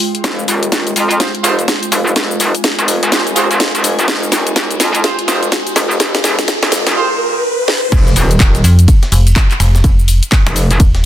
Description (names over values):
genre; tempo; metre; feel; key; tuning
bass house; 125 BPM; 4/4; swing 61% on 16ths; F minor; A4 = 441 Hz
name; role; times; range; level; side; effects
house drum kit; drums; 0.0-11.0 s; crash cymbal, finger snaps, handclaps, hi-hat, shaker, snare drum; -16 LUFS; left 1 dB; high-pass filter on hats, soft clipping on snare, high-pass filter on snare, high-pass filter on perc, high-pass filter on cymbals, high-pass filter on room
airy breathy pad; texture; 0.0-7.0 s; Ab3 to Ab5; -22 LUFS; equal; chorus, sidechain pumping
metallic wobble bass; bass; 0.2-10.8 s; Eb1 to F2; -15 LUFS; equal; distortion, chorus, sidechain pumping, high-pass filter
electronic kick drum; drums; 0.2-10.9 s; none; -12 LUFS; equal; high-pass filter on kick, high-pass filter on room
riser and impact; sound effects; 1.8-9.8 s; none; -21 LUFS; equal; none
clear horn section; stabs; 1.2-7.1 s; F4 to C5; -20 LUFS; right 4 dB; sidechain pumping, low-pass filter, dub echo
breakbeat sampler-style drum kit; drums; 7.9-11.0 s; hi-hat, ride cymbal, snare drum; -27 LUFS; right 1 dB; high-pass filter on cymbals, high-pass filter on snare, high-pass filter on hats
metallic FM bass; bass; 8.6-11.1 s; Eb1 to F2; -9 LUFS; equal; tube saturation, sidechain pumping
room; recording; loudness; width
light reverb; dense, heavily limited modern master, high-pass filter; -10 LUFS; side -12 dB against mid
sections
0.0-7.9 A section; 7.9-11.1 B section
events
build-up 0.0-7.9; drum fill 0.2-7.0, 7.7; riser 1.8-7.9; drop 7.9-11.1; impact 7.9-9.8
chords
0.0 Fmadd9; 7.9 N.C.